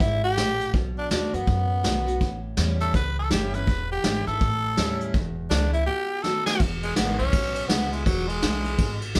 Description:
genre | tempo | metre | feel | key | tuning
rockabilly | 164 BPM | 4/4 | swing 63% on 8ths | E mixolydian | A4 = 440 Hz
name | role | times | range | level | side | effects
growling tenor saxophone | melody | 0.0-9.0 s | F#3 to B4 | -30 LUFS | equal | none
picked steel-string acoustic guitar | accompaniment | 0.0-9.2 s | E2 to F#4 | -34 LUFS | equal | none
upright bass | bass | 0.0-9.2 s | E1 to F#2 | -31 LUFS | equal | none
vintage brush drum kit | drums | 0.0-9.2 s | hi-hat, kick drum, ride cymbal, snare drum | -28 LUFS | equal | none
room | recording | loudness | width
light reverb | band playing live in one room | -25 LUFS | mono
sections
0.0-6.6 A section; 6.6-9.2 B section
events
drum fill 6.2-6.6; tenor saxophone solo 6.6-9.2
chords
0.0 E; 0.7 B7; 2.2 A7; 3.7 E7; 4.4 A7; 5.1 E7; 5.9 B7; 6.6 E7

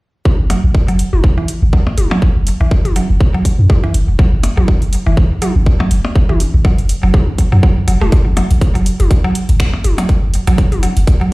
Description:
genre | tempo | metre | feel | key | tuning
minimal techno | 122 BPM | 4/4 | swing 56% on 16ths | F# minor | A4 = 440 Hz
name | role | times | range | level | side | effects
electronic kick drum | drums | 0.3-11.2 s | none | -11 LUFS | equal | none
electronic toms and percussion blips | percussion | 0.3-10.8 s | none | -23 LUFS | left 2 dB | tape echo
punchy sub bass | bass | 0.4-11.0 s | E1 to F#2 | -13 LUFS | equal | sidechain pumping
mallet-like synth pluck | riff | 0.5-11.2 s | E3 to A3 | -20 LUFS | right 1 dB | chorus, sidechain pumping, tape echo
booming analog drum machine | drums | 0.5-11.2 s | finger snaps, hi-hat | -27 LUFS | right 2 dB | none
room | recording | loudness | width
light reverb | played on a big sound system in a bare room, large studio reverb | -11 LUFS | side -22 dB against mid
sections
0.3-11.3 A section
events
none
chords
0.3 F#5

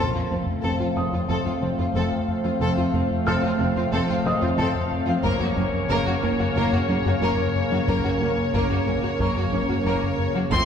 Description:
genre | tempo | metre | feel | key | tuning
cinematic, hybrid orchestral and electronic film score | 91 BPM | 4/4 | straight | unclear | A4 = 441 Hz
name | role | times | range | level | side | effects
dark studio violin section | melody | 0.0-10.7 s | Db5 to C6 | -30 LUFS | left 4 dB | low-pass filter
warm symphonic violin section | second line | 0.0-10.4 s | C4 to Bb4 | -30 LUFS | left 2 dB | none
rich symphonic viola section | accompaniment | 0.0-10.7 s | F3 to C4 | -32 LUFS | equal | low-pass filter
hollow soft pad | sustained chords | 0.0-10.7 s | C3 to C5 | -26 LUFS | equal | chorus, low-pass filter
soft round pluck | arpeggios | 0.0-10.6 s | F3 to Gb4 | -34 LUFS | right 4 dB | none
round analog bass | riff | 0.0-10.6 s | F2 to Gb3 | -28 LUFS | left 2 dB | low-pass filter
clear symphonic double bass section | bass | 0.0-10.6 s | F1 to Gb1 | -31 LUFS | right 2 dB | none
dark symphonic cello section | bass | 0.0-10.6 s | F2 to Gb2 | -32 LUFS | right 2 dB | none
felt-muted upright piano | texture | 0.0-10.5 s | C5 to F6 | -33 LUFS | equal | digital delay
taiko ensemble | drums | 5.2-10.7 s | none | -34 LUFS | equal | none
mellow French horn section | sustained chords | 10.5-10.7 s | A3 to F4 | -34 LUFS | left 5 dB | low-pass filter
room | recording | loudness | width
wet concert hall reverb, RT60 2.6 s | heard from further back in the room | -20 LUFS | side -7 dB against mid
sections
0.0-10.5 A section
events
filter sweep 0.0-10.5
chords
0.0 F; 5.2 Gb

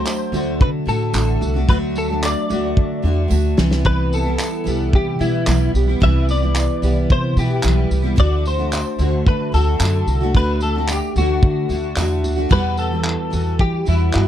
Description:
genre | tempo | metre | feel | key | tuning
acoustic pop | 111 BPM | 4/4 | straight | unclear | A4 = 443 Hz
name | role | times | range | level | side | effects
direct-recorded clean electric guitar | melody | 0.0-14.3 s | E4 to E5 | -24 LUFS | left 3 dB | ensemble chorus
picked steel-string acoustic guitar | accompaniment | 0.0-14.3 s | E2 to F#4 | -22 LUFS | equal | double-tracked left and right
nylon-string guitar | arpeggios | 0.0-14.3 s | E3 to G4 | -29 LUFS | right 7 dB | none
upright bass | bass | 0.0-14.3 s | A1 to E3 | -19 LUFS | equal | none
loose indie drum kit | drums | 0.1-14.3 s | crash cymbal, handclaps, kick drum, snare drum, tambourine | -19 LUFS | equal | none
tambourine | percussion | 0.1-12.1 s | none | -34 LUFS | right 15 dB | none
room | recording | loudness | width
little or no reverb | dry, close 1970s-style studio recording | -16 LUFS | side -11 dB against mid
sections
0.0-12.5 A section; 12.5-14.3 A section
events
drum fill 2.8-3.9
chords
0.0 D; 3.6 Cmaj7; 8.2 D; 12.5 Emadd9

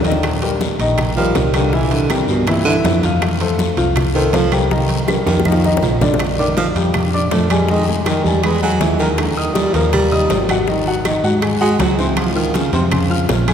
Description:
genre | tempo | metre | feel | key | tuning
Afro-Cuban jazz | 161 BPM | 4/4 | straight | F major | A4 = 440 Hz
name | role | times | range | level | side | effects
warm baby grand piano | accompaniment | 0.0-13.5 s | D3 to F6 | -19 LUFS | left 2 dB | none
hollow-body short-scale picked electric bass | bass | 0.0-13.5 s | Ab1 to Ab2 | -19 LUFS | equal | none
congas | percussion | 0.0-13.5 s | none | -26 LUFS | right 1 dB | none
guiro | percussion | 0.0-13.5 s | none | -30 LUFS | left 6 dB | none
timbales | percussion | 0.0-13.5 s | none | -26 LUFS | right 5 dB | none
bongos | percussion | 0.1-13.5 s | none | -26 LUFS | left 4 dB | none
claves | percussion | 0.2-13.5 s | none | -32 LUFS | right 4 dB | none
mellow baritone saxophone | second line | 1.2-13.3 s | Bb2 to A3 | -20 LUFS | right 2 dB | none
room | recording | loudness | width
wet cathedral reverb, RT60 4.5 s | recorded in a church or concert hall | -14 LUFS | side -8 dB against mid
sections
0.0-6.2 A section; 6.2-13.5 A section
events
drum fill 0.0, 4.7-6.2; baritone saxophone solo 0.0-13.5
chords
0.2 Eb6; 1.7 C7; 3.2 Fadd9; 4.7 Cm7; 5.5 Bbadd11; 6.2 Bb6; 7.7 Fm7; 8.4 E; 9.2 Eb; 10.7 Ab7; 12.2 Dbmaj7

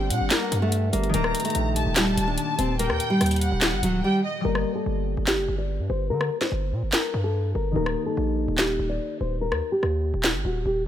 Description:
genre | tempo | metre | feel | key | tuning
hip hop, trap | 145 BPM | 4/4 | half-time | G harmonic minor | A4 = 437 Hz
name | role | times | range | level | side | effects
nylon-string guitar | melody | 0.0-10.8 s | F#3 to D5 | -27 LUFS | left 1 dB | low-pass filter
warm studio violin section | second line | 0.0-4.4 s | Eb5 to Bb5 | -30 LUFS | left 1 dB | ping-pong delay
concert harp | accompaniment | 0.0-10.9 s | Eb3 to D5 | -33 LUFS | left 2 dB | low-pass filter
warm analog pad | sustained chords | 0.0-4.4 s | Bb2 to G4 | -34 LUFS | right 1 dB | chorus
distorted 808-style bass | bass | 0.0-10.9 s | Eb1 to D3 | -26 LUFS | equal | distortion
trap drum kit | drums | 0.1-10.3 s | handclaps, hi-hat, rim click, snare drum | -26 LUFS | equal | none
room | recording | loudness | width
studio ambience | none | -22 LUFS | side -11 dB against mid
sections
0.0-4.4 A section; 4.4-10.9 B section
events
drums muted 4.0-4.4; break 4.4-10.9; filter sweep 4.4-10.9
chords
0.0 Gm; 1.1 Eb; 4.4 Gm; 7.8 Eb

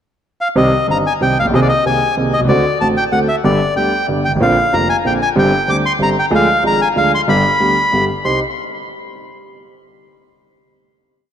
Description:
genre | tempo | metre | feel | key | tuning
tango | 188 BPM | 3/4 | rubato | C minor | A4 = 440 Hz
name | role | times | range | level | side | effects
bandoneon | melody | 0.4-8.4 s | D5 to D6 | -15 LUFS | left 1 dB | ping-pong delay
warm concert grand piano | accompaniment | 0.6-8.4 s | F1 to Ab4 | -15 LUFS | right 1 dB | none
room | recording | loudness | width
wet plate reverb, RT60 3.5 s | dreamy mix soaked in reverb | -12 LUFS | side -9 dB against mid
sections
0.0-0.6 pickup bar; 0.6-8.2 variation; 8.2-9.2 final chord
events
none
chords
0.0 N.C.; 0.6 Cm; 1.5 Abadd9/C; 2.5 D7; 3.4 G; 4.4 Bbadd9; 5.4 Gsus4; 6.3 Ddim; 7.3 G; 8.2 Cm

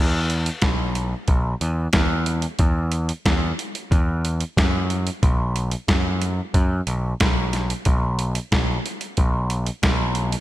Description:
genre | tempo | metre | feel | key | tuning
quiet-loud alternative rock | 91 BPM | 4/4 | straight | unclear | A4 = 436 Hz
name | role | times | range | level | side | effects
growling picked electric bass | bass | 0.0-10.3 s | B1 to F#2 | -22 LUFS | equal | overdrive
boom bap sampler-style drum kit | drums | 0.3-10.4 s | hi-hat, kick drum, snare drum | -21 LUFS | equal | none
room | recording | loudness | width
light reverb, digital ambience | none | -19 LUFS | side -15 dB against mid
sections
0.0-10.4 A section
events
none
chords
none

